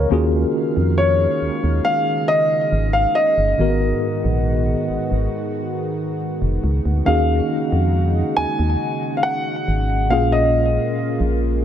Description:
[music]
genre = R&B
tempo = 69 BPM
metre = 4/4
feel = straight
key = Eb minor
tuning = A4 = 441 Hz
[part]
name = tine electric piano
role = accompaniment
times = 0.0-11.6 s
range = Ab2 to Ab5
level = -23 LUFS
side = left 1 dB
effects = overdrive, fast stereo tremolo
[part]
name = lush unison pad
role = sustained chords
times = 0.0-11.6 s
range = Db3 to F5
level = -26 LUFS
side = right 1 dB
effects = chorus
[part]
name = organ-like FM bass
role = bass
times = 0.0-11.6 s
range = F1 to F2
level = -19 LUFS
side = equal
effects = none
[part]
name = warm grand piano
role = melody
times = 1.0-11.2 s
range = Db5 to Ab5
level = -20 LUFS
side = left 1 dB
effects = ping-pong delay
[sound]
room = light reverb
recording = none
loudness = -17 LUFS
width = side -10 dB against mid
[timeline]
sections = 0.0-7.1 A section; 7.1-11.6 B section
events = none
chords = 0.1 Ebm11; 3.6 Abm7; 7.1 Ebm11; 10.1 Bbm7

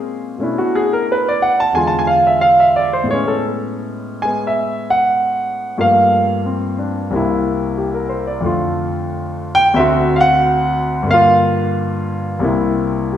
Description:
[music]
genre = solo jazz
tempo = 90 BPM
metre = 4/4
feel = swing 69% on 8ths, rubato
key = unclear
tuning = A4 = 440 Hz
[part]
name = warm grand piano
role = solo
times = 0.0-13.2 s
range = C2 to A5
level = -14 LUFS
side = equal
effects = none
[sound]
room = wet large studio reverb, RT60 1.4 s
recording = heard from further back in the room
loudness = -14 LUFS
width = side -10 dB against mid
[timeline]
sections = 0.0-13.2 A section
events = grand piano solo 0.0-13.2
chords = 0.4 Bm11; 1.7 E7b9; 3.1 Amaj9; 5.8 Gm9; 7.1 C7; 8.4 F6; 9.8 D7; 11.1 Gm7; 12.4 C7

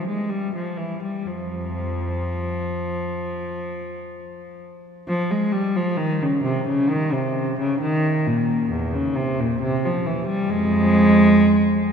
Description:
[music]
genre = classical, baroque-style suite movement for unaccompanied cello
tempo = 61-68 BPM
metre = 4/4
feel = rubato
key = F minor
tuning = A4 = 441 Hz
[part]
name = dark cello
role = solo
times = 0.0-11.9 s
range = E2 to Ab3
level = -19 LUFS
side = equal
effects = none
[sound]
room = wet cathedral reverb, RT60 4.9 s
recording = recorded in a church or concert hall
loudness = -19 LUFS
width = side -7 dB against mid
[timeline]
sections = 0.0-5.1 A section; 5.1-11.9 B section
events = none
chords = none

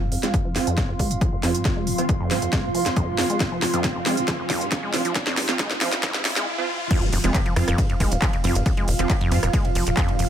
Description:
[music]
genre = driving peak-time techno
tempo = 137 BPM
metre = 4/4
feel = straight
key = F minor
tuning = A4 = 440 Hz
[part]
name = acid bass, saw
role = riff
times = 0.0-10.3 s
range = F2 to Ab3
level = -27 LUFS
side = equal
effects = sidechain pumping, digital delay
[part]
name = deep dark ambient pad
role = drone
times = 1.2-10.3 s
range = F3 to F4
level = -30 LUFS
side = right 2 dB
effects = chorus, built-in reverb, sidechain pumping
[part]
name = riser and impact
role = sound effects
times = 1.9-8.7 s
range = none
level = -32 LUFS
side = equal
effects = none
[part]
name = airy breathy pad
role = texture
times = 0.0-10.3 s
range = C4 to C6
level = -33 LUFS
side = right 1 dB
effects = chorus, sidechain pumping
[part]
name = techno drum kit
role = drums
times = 0.1-10.3 s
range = crash cymbal, handclaps, hi-hat, ride cymbal, rim click, snare drum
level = -26 LUFS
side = equal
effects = sidechain pumping on hats, sidechain pumping on cymbals
[part]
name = rave stab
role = stabs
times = 0.2-9.4 s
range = F3 to F4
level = -29 LUFS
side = right 5 dB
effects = chorus, built-in reverb, sidechain pumping, digital delay
[part]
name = electronic kick drum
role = drums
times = 0.3-10.1 s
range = none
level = -24 LUFS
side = equal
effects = none
[part]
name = tight sequencer bass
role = bass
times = 7.1-10.3 s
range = Eb1 to F2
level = -23 LUFS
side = equal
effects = sidechain pumping
[sound]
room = moderate stone room reverb, RT60 0.9 s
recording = high-pass filter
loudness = -20 LUFS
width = side -10 dB against mid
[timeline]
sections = 0.0-6.9 A section; 6.9-10.3 B section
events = build-up 0.0-6.9; drum fill 0.0-6.5; filter sweep on acid bass 0.0-6.9; filter sweep on synth stab 0.0-6.9; filter sweep 0.0-6.9; riser 1.9-6.9; break 6.5-6.9; drop 6.9-10.3; impact 6.9-8.7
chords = 0.0 F5

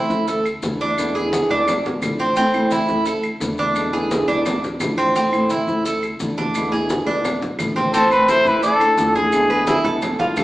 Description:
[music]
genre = latin, Cuban son and guajira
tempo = 172 BPM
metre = 4/4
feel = straight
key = unclear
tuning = A4 = 440 Hz
[part]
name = nylon-string guitar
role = accompaniment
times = 0.0-10.4 s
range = B2 to E4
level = -23 LUFS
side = left 1 dB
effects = none
[part]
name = Cuban tres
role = arpeggios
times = 0.0-10.4 s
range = C4 to D5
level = -20 LUFS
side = right 2 dB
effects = none
[part]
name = upright bass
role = bass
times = 0.0-10.4 s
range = A1 to E2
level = -33 LUFS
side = equal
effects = none
[part]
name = congas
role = percussion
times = 0.1-10.4 s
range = none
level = -28 LUFS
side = equal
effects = none
[part]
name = maracas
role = percussion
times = 0.1-10.4 s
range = none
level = -35 LUFS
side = left 2 dB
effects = none
[part]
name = claves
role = percussion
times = 0.5-10.4 s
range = none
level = -32 LUFS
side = right 1 dB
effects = none
[part]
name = breathy trumpet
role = melody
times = 7.9-9.8 s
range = G#4 to C5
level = -16 LUFS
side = left 1 dB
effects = none
[sound]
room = wet large studio reverb, RT60 1.4 s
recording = band playing live in one room, small speaker sound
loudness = -16 LUFS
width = side -16 dB against mid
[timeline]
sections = 0.0-7.9 A section; 7.9-10.4 B section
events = none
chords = 0.3 Dsus2; 1.0 E7; 1.7 Dmadd9; 2.4 Am; 3.1 Dsus2; 3.8 E7; 4.5 Dmadd9; 5.2 Am; 5.9 Dsus2; 6.5 E7; 7.2 Dmadd9; 7.9 Am; 8.6 Dmadd9; 9.3 E7

